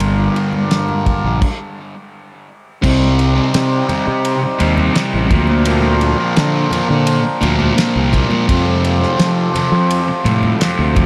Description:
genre	psychedelic rock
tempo	85 BPM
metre	4/4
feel	straight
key	C dorian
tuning	A4 = 442 Hz
part	hand-pumped harmonium	sustained chords	0.0-11.1 s	G3 to C5	-23 LUFS	equal	none
part	fuzz guitar	riff	0.0-11.1 s	F2 to C4	-20 LUFS	equal	distortion, phaser, dub echo
part	fuzz fingered electric bass	bass	0.0-11.1 s	G1 to F3	-19 LUFS	equal	overdrive
part	damped 70s drum kit	drums	0.0-11.1 s	crash cymbal, kick drum, ride cymbal, snare drum	-23 LUFS	equal	dub echo
part	congas	percussion	0.5-11.1 s	none	-30 LUFS	equal	none
room	moderate spring reverb, RT60 2.5 s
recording	echo-heavy mix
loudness	-15 LUFS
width	mono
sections	0.0-2.8 A section; 2.8-11.1 B section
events	stop 1.4-2.8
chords	0.0 Gm7; 2.8 Cm; 5.3 Bbadd9/D; 8.5 Fadd9

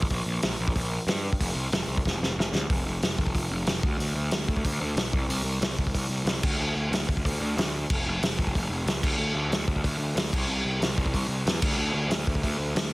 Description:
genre	punk rock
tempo	185 BPM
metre	4/4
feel	straight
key	unclear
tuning	A4 = 440 Hz
part	fuzz picked electric bass	bass	0.0-12.9 s	F1 to G2	-28 LUFS	equal	overdrive
part	loose indie drum kit	drums	0.0-12.8 s	crash cymbal, hi-hat, kick drum, snare drum	-26 LUFS	equal	none
room	little or no reverb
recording	dense, heavily limited modern master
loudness	-24 LUFS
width	side -22 dB against mid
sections	0.0-2.7 A section; 2.7-12.9 B section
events	drum fill 2.1-2.7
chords	none

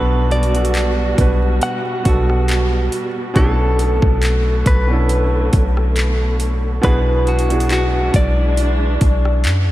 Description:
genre	contemporary R&B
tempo	69 BPM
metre	4/4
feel	swing 54% on 16ths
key	unclear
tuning	A4 = 441 Hz
part	direct-recorded clean electric guitar	melody	0.0-9.7 s	F#4 to F#5	-22 LUFS	equal	tremolo, diffuse ambient delay
part	felt-muted upright piano	accompaniment	0.0-9.7 s	B2 to B4	-23 LUFS	right 2 dB	none
part	warm studio string section	sustained chords	0.0-9.7 s	D3 to F#4	-25 LUFS	equal	sidechain pumping
part	warm 808-style bass	bass	0.0-9.7 s	B1 to F#2	-16 LUFS	equal	none
part	trap drum kit	drums	0.3-9.7 s	handclaps, hi-hat, kick drum, rim click	-19 LUFS	equal	none
room	light reverb, digital ambience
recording	vinyl crackle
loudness	-14 LUFS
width	side -15 dB against mid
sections	0.0-6.8 A section; 6.8-9.7 B section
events	none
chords	0.0 Gmaj7/B; 3.4 Bm11; 6.8 E9/B

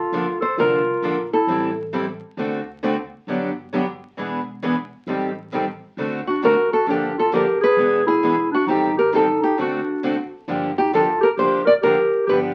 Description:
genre	acoustic string swing (jazz manouche)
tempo	133 BPM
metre	4/4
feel	swing 63% on 8ths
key	G minor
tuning	A4 = 440 Hz
part	nylon-string guitar	melody	0.0-1.7, 6.3-12.4 s	F#4 to D5	-22 LUFS	equal	none
part	dark clarinet	second line	0.0-1.7, 6.3-12.4 s	D4 to Bb4	-24 LUFS	equal	none
part	upright bass	bass	0.0-12.5 s	E1 to D2	-42 LUFS	equal	none
part	picked steel-string acoustic guitar	accompaniment	0.1-12.5 s	D3 to A4	-32 LUFS	equal	none
part	picked steel-string acoustic guitar	accompaniment	0.1-12.5 s	D3 to B4	-28 LUFS	equal	none
room	moderate studio ambience, RT60 0.5 s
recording	very old 78 rpm record, vinyl crackle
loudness	-21 LUFS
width	mono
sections	0.0-10.5 A section; 10.5-12.5 B section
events	break 9.6-10.5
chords	0.0 Bbmaj7; 1.5 Am7; 2.4 D7; 3.3 Gmaj7; 4.2 E7; 5.1 Am7b5; 6.0 D7; 6.9 Gm7; 7.8 E7; 8.7 Am7b5; 9.6 D7; 10.5 Gm7

